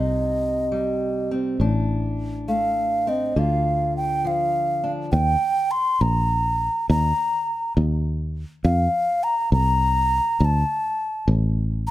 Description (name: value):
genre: indie folk with a building arrangement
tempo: 68 BPM (dotted quarters)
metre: 6/8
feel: straight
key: unclear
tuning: A4 = 436 Hz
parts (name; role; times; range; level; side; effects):
- breathy mellow alto ocarina; melody; 0.0-11.9 s; Eb5 to C6; -22 LUFS; equal; none
- fingerpicked steel-string acoustic guitar; accompaniment; 0.0-5.1 s; A2 to F4; -26 LUFS; equal; none
- fingered electric bass; bass; 0.0-11.9 s; A1 to F2; -21 LUFS; equal; none
room: light reverb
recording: none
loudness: -20 LUFS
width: side -15 dB against mid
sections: 0.0-5.1 A section; 5.1-11.9 B section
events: none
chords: 0.0 Cm; 1.6 Amadd11; 3.4 Dm; 5.1 Eb; 6.9 Eb5; 8.6 Fsus4; 10.4 D5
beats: 0.71 | 1.60 2.48 | 3.36 4.24 | 5.12 6.01 | 6.89 7.77 | 8.65 9.53 | 10.41 11.28